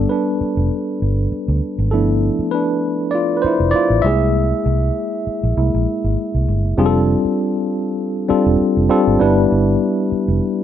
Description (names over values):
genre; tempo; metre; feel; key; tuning
lush 1970s-style soul; 99 BPM; 4/4; swing 54% on 16ths; unclear; A4 = 436 Hz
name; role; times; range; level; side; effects
tine electric piano; accompaniment; 0.0-10.6 s; F3 to E5; -16 LUFS; left 1 dB; medium stereo tremolo
vintage muted fingered electric bass; bass; 0.0-10.4 s; E1 to D2; -18 LUFS; right 1 dB; none
room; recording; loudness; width
digital ambience; none; -15 LUFS; side -10 dB against mid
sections
0.0-6.8 A section; 6.8-10.6 A section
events
tine electric piano solo 0.0-6.8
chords
0.0 Gadd9; 1.9 G13; 4.1 C7b13; 6.8 F69; 9.2 Em7